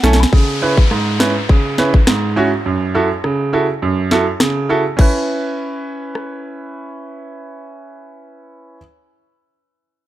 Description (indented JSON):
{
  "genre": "dancehall",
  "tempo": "103 BPM",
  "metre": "4/4",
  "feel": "straight",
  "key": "C# minor",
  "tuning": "A4 = 441 Hz",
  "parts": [
    { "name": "clear baby grand piano", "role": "accompaniment", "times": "0.0-8.8 s", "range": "F#2 to G#5", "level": "-17 LUFS", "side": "right 2 dB", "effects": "none" },
    { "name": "island pop drum kit", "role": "drums", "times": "0.0-6.3 s", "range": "crash cymbal, kick drum, rim click, snare drum", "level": "-14 LUFS", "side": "equal", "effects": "none" },
    { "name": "downlifter", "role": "sound effects", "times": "0.3-5.0 s", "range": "none", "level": "-27 LUFS", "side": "left 2 dB", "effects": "none" }
  ],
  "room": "light reverb",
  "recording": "dark, warm production",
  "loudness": "-13 LUFS",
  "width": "side -14 dB against mid",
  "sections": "0.3-5.0 A section; 5.0-7.3 B section",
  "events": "grand piano fill 0.0-0.3; drum fill 0.0-0.3; kick muted 3.8-5.0",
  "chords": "0.3 C#m7; 2.7 F#m7; 5.0 C#m7"
}